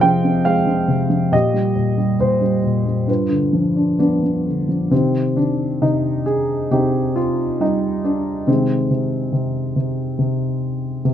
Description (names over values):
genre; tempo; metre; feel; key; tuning
classical, lyrical solo piano; 69 BPM; 4/4; rubato; C minor from 4.9 s; A4 = 436 Hz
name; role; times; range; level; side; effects
dark grand piano; solo; 0.0-11.1 s; F2 to G5; -16 LUFS; equal; none
room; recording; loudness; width
light reverb; close, detailed microphones; -16 LUFS; side -10 dB against mid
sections
0.0-4.9 A section; 4.9-11.1 B section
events
none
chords
0.0 Fm; 1.3 Eb/Bb; 3.1 G7; 4.9 Cm; 8.5 Ab/C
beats
0.46 | 1.33 2.21 3.08 4.00 | 4.92 5.83 6.72 7.61 | 8.48 9.33 10.19 11.05